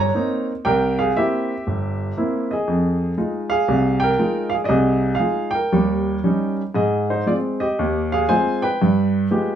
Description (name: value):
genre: solo jazz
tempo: 118 BPM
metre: 4/4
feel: swing 67% on 8ths, rubato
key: F minor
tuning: A4 = 440 Hz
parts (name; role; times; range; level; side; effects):
- warm baby grand piano; solo; 0.0-9.6 s; G1 to Bb5; -18 LUFS; right 1 dB; none
room: light reverb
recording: small room ambience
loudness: -18 LUFS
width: side -9 dB against mid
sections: 0.0-6.8 A section; 6.8-9.6 B section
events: none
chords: 0.0 Cm7; 0.7 C7; 2.7 Fm7; 5.7 Eb7; 6.8 Ab6; 8.8 G7b9